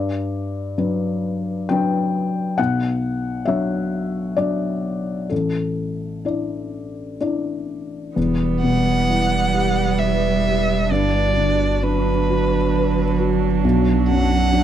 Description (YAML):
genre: neoclassical piano and strings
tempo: 65 BPM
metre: 3/4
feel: uneven beats, rubato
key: unclear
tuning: A4 = 440 Hz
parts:
  - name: felt-muted upright piano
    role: accompaniment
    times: 0.0-14.6 s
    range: A1 to G5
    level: -21 LUFS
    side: left 3 dB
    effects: none
  - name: warm cello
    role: second line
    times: 8.2-14.6 s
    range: F#3 to G3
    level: -23 LUFS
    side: right 12 dB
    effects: none
  - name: warm viola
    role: accompaniment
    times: 8.2-14.6 s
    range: B3 to D4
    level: -28 LUFS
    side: right 8 dB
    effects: none
  - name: warbly tape-like pad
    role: sustained chords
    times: 8.2-14.6 s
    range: G3 to C#5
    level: -29 LUFS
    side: equal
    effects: chorus, built-in reverb
  - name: saturated sub bass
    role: bass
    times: 8.2-14.6 s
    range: E1 to B1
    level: -22 LUFS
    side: right 1 dB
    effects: none
  - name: rich violin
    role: melody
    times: 8.6-14.6 s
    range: B4 to F#5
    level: -22 LUFS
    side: equal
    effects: none
room: studio ambience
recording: dry, close 1970s-style studio recording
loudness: -18 LUFS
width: side -10 dB against mid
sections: 0.0-8.2 A section; 8.2-14.6 B section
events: none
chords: 0.0 Gmaj7; 2.6 Bmadd9; 5.3 Asus4; 8.2 Em; 10.9 Gmaj7; 13.6 Bmadd9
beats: 0.76 1.69 | 2.58 3.47 4.37 | 5.31 6.25 7.21 | 8.16 9.09 9.99 | 10.90 11.82 12.73 | 13.64 14.53